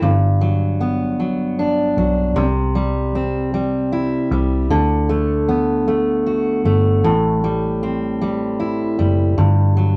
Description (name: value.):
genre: six-eight pop ballad.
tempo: 51 BPM (dotted quarters).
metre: 6/8.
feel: straight.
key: G major.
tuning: A4 = 440 Hz.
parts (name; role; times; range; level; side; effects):
fingerpicked steel-string acoustic guitar; accompaniment; 0.0-10.0 s; G2 to F#4; -20 LUFS; equal; none.
vintage muted fingered electric bass; bass; 0.0-10.0 s; F#1 to D2; -21 LUFS; equal; none.
room: wet studio reverb, RT60 0.6 s.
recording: none.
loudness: -18 LUFS.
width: mono.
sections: 0.0-10.0 A section.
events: none.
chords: 0.0 Gmaj7; 2.4 C; 4.7 D6; 7.0 Am7; 9.4 Gmaj7(no3).